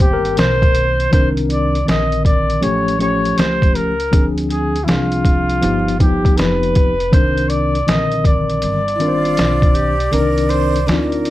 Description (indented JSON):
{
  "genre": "hip hop, jazz-hop",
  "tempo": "80 BPM",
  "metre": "4/4",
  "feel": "swing 65% on 16ths",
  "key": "C minor",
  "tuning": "A4 = 440 Hz",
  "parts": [
    { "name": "breathy flugelhorn", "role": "melody", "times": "0.0-11.3 s", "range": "E4 to Eb5", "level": "-19 LUFS", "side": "equal", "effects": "none" },
    { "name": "mellow tine electric piano", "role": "accompaniment", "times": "0.0-11.3 s", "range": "D3 to C5", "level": "-19 LUFS", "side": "left 2 dB", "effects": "fast stereo tremolo" },
    { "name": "upright bass", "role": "bass", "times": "0.0-11.3 s", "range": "F1 to D2", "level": "-21 LUFS", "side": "equal", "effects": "none" },
    { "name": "trip hop sampler-style drum kit", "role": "drums", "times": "0.0-11.3 s", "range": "hi-hat, kick drum, snare drum", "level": "-16 LUFS", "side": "equal", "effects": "none" },
    { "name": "breathy mellow silver concert flute", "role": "second line", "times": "8.9-11.3 s", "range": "E4 to C5", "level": "-24 LUFS", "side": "right 4 dB", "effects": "none" }
  ],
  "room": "light reverb",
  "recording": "vinyl crackle",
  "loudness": "-13 LUFS",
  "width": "side -15 dB against mid",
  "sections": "0.0-1.1 A section; 1.1-11.3 B section",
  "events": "tine electric piano solo 0.0-1.1; kick muted 10.1-11.3",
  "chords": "0.0 Cm7; 1.1 Cm9; 2.6 Aaug7; 4.1 Dm7b5; 5.6 Gaug7; 7.1 Cm9"
}